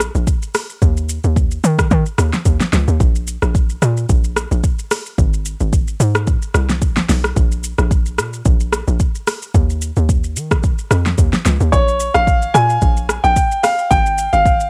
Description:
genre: amapiano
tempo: 110 BPM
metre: 4/4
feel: swing 55% on 16ths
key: Bb dorian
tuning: A4 = 441 Hz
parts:
  - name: hollow log drum bass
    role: bass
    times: 0.0-14.7 s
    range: Ab1 to Eb3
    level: -19 LUFS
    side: equal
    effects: none
  - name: deep house drum kit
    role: drums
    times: 0.0-14.7 s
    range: hi-hat, kick drum, rim click, shaker, snare drum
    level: -19 LUFS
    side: equal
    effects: none
  - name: clear baby grand piano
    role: melody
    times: 11.7-14.7 s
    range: Db5 to Ab5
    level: -17 LUFS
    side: equal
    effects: none
room: little or no reverb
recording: home recording on cassette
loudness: -16 LUFS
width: mono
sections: 0.0-14.7 A section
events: none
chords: 0.0 N.C.; 5.2 Ab; 6.8 N.C.; 11.7 Bbm7; 13.4 N.C.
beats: 0.27 | 0.82 1.36 1.91 2.46 | 3.00 3.55 4.09 4.64 | 5.18 5.73 6.27 6.82 | 7.36 7.91 8.46 9.00 | 9.55 10.09 10.64 11.18 | 11.73 12.27 12.82 13.36 | 13.91 14.46

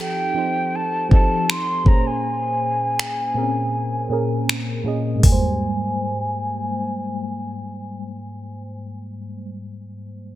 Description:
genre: contemporary R&B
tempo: 80 BPM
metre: 4/4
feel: straight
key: Ab major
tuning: A4 = 438 Hz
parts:
  - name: breathy jazz flute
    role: melody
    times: 0.0-9.0 s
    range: G5 to C6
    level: -25 LUFS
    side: equal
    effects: low-pass filter, tape echo
  - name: FM electric piano with auto-pan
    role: accompaniment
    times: 0.0-10.4 s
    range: Ab2 to Eb5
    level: -25 LUFS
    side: equal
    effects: phaser, low-pass filter
  - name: smooth R&B drum kit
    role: drums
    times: 0.0-5.4 s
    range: finger snaps, hi-hat, kick drum, toms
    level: -16 LUFS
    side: equal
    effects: soft clipping on snare
room: light reverb, digital ambience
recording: dense, heavily limited modern master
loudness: -18 LUFS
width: side -14 dB against mid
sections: 0.0-5.2 A section; 5.2-8.2 B section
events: filter sweep 0.0-5.2; break 2.2-5.2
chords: 0.0 F7; 1.9 Bbm7; 5.2 Abmaj7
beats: 0.73 1.48 | 2.23 2.98 3.73 4.48 | 5.23 5.98 6.73 7.48

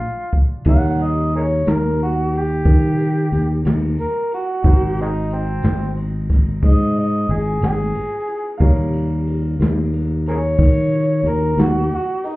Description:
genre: slow blues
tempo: 60 BPM (dotted quarters)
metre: 12/8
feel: straight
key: Eb mixolydian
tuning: A4 = 440 Hz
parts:
  - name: overdriven harmonica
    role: melody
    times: 0.0-12.4 s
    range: Ab3 to Gb5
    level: -22 LUFS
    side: equal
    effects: none
  - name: clear upright piano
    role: accompaniment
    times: 0.0-12.4 s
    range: G3 to C6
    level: -30 LUFS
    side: right 2 dB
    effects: none
  - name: jazz brush drum kit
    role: drums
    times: 0.3-12.4 s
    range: crash cymbal, hi-hat, kick drum, ride cymbal, snare drum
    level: -20 LUFS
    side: equal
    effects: none
  - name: fingered electric bass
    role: bass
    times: 0.7-11.9 s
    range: Ab1 to Eb3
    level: -18 LUFS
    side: equal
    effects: none
room: little or no reverb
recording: heard muffled through a wall, club ambience, EQ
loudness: -16 LUFS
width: side -19 dB against mid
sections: 0.7-12.4 A section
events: harmonica solo 0.7-12.4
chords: 0.0 Bb7 (rootless); 0.7 Eb7; 4.6 Ab7; 8.6 Eb7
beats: | 0.66 1.66 2.65 3.64 | 4.64 5.63 6.62 7.61 | 8.61 9.60 10.59 11.58

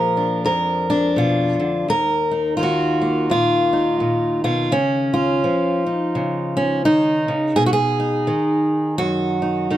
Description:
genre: folk, solo fingerstyle acoustic guitar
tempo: 84 BPM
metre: 4/4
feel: swing 60% on 8ths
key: Eb minor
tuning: A4 = 437 Hz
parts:
  - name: fingerpicked steel-string acoustic guitar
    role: solo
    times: 0.0-9.8 s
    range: Eb2 to Bb4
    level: -17 LUFS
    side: equal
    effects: none
room: light reverb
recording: none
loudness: -17 LUFS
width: side -13 dB against mid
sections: 0.0-9.8 A section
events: none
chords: 0.0 Bb; 1.9 Ebsus2; 4.7 Dbadd9; 7.6 B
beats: 0.46 1.17 | 1.88 2.59 3.30 4.01 | 4.72 5.43 6.14 6.85 | 7.57 8.28 8.99 9.70

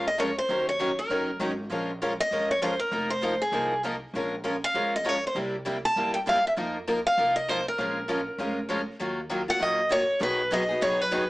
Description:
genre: acoustic string swing (jazz manouche)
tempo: 197 BPM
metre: 4/4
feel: swing 58% on 8ths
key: Bb minor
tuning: A4 = 441 Hz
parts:
  - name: picked steel-string acoustic guitar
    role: melody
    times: 0.0-11.3 s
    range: Ab4 to A5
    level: -25 LUFS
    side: equal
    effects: none
  - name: picked steel-string acoustic guitar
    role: accompaniment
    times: 0.0-11.2 s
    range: B2 to Bb4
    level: -30 LUFS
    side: left 1 dB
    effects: none
  - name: picked steel-string acoustic guitar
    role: accompaniment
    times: 0.0-11.2 s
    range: B2 to Bb4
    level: -34 LUFS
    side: right 2 dB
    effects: none
  - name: upright bass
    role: bass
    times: 0.0-11.3 s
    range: F1 to F#2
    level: -40 LUFS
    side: equal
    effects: none
room: moderate studio reverb, RT60 0.7 s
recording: small speaker sound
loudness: -24 LUFS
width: side -20 dB against mid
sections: 0.0-9.0 A section; 9.0-11.3 B section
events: none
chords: 0.5 Ebm7; 1.7 Bbm7; 2.9 F7sus4; 4.1 Bbm7; 5.4 C7; 6.6 F7sus4; 7.8 Bbm7; 9.0 Ebmadd9; 10.2 B6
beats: 0.19 | 0.49 0.80 1.10 1.41 | 1.71 2.01 2.32 2.62 | 2.93 3.23 3.54 3.84 | 4.14 4.45 4.75 5.06 | 5.36 5.66 5.97 6.27 | 6.58 6.88 7.18 7.49 | 7.79 8.09 8.40 8.70 | 9.01 9.31 9.61 9.91 | 10.22 10.52 10.83 11.13

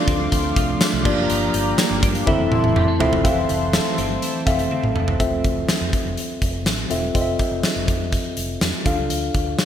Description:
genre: 1980s-style pop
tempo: 123 BPM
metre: 4/4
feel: straight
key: F major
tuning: A4 = 438 Hz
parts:
  - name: mellow tine electric piano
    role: accompaniment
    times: 0.0-9.7 s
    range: Bb3 to F5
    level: -23 LUFS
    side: left 2 dB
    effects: medium stereo tremolo
  - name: chorused pulse-width pad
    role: sustained chords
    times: 0.0-5.2 s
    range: A3 to D6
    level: -27 LUFS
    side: left 2 dB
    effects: none
  - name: twelve-string electric guitar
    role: riff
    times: 0.0-5.7 s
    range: E3 to F4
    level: -28 LUFS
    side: right 6 dB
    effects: analog chorus, digital delay
  - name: vintage muted fingered electric bass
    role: bass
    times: 0.1-9.6 s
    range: Eb1 to G2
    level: -27 LUFS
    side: equal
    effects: none
  - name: big rock drum kit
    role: drums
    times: 0.1-9.7 s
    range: crash cymbal, hi-hat, kick drum, snare drum, tambourine, toms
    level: -21 LUFS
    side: equal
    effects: gated reverb
room: moderate plate reverb, RT60 2.4 s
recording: bright 1980s-style digital production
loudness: -18 LUFS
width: side -9 dB against mid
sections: 0.0-3.2 A section; 3.2-5.2 B section; 5.2-9.7 C section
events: drum fill 2.3-3.2, 4.7-5.2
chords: 0.0 Dm7; 1.1 Gm7; 2.3 Fmaj7; 8.9 Dm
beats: 0.32 0.81 | 1.30 1.78 2.27 2.76 | 3.25 3.74 4.22 4.71 | 5.20 5.69 6.17 6.66 | 7.15 7.64 8.13 8.61 | 9.10 9.59

